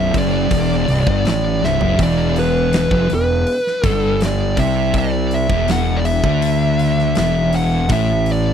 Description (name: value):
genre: stoner and doom metal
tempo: 81 BPM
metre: 4/4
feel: straight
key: unclear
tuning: A4 = 440 Hz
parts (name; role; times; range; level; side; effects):
- fuzz lead guitar; melody; 0.0-8.5 s; B4 to F#5; -20 LUFS; equal; distortion
- thick fuzz guitar; riff; 0.0-8.5 s; B1 to D3; -21 LUFS; left 12 dB; distortion
- thick fuzz guitar; riff; 0.0-8.5 s; B1 to D3; -21 LUFS; right 10 dB; distortion
- fuzz fingered electric bass; bass; 0.0-8.5 s; B0 to D2; -20 LUFS; equal; overdrive
- big rock drum kit; drums; 0.1-8.4 s; hi-hat, kick drum, snare drum, toms; -24 LUFS; equal; none
room: little or no reverb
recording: dry, close 1970s-style studio recording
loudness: -14 LUFS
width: side -8 dB against mid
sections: 0.0-8.5 A section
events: drum fill 1.6-2.0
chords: 0.0 Bm; 2.0 E5; 7.9 A5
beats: 0.52 1.25 | 1.99 2.73 3.47 4.21 | 4.95 5.69 6.43 7.17 | 7.91